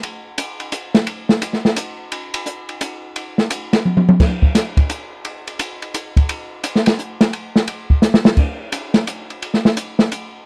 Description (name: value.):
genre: jazz.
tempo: 172 BPM.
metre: 3/4.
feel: swing 64% on 8ths.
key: none.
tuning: none.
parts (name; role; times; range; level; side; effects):
open jazz drum kit; drums; 0.0-10.2 s; crash cymbal, hi-hat, kick drum, ride cymbal, snare drum, toms; -18 LUFS; equal; none.
room: light reverb.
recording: dry, close 1970s-style studio recording.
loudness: -18 LUFS.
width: mono.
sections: 0.0-8.4 A section; 8.4-10.5 B section.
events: drum fill 3.9-4.2, 8.0-8.4.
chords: none.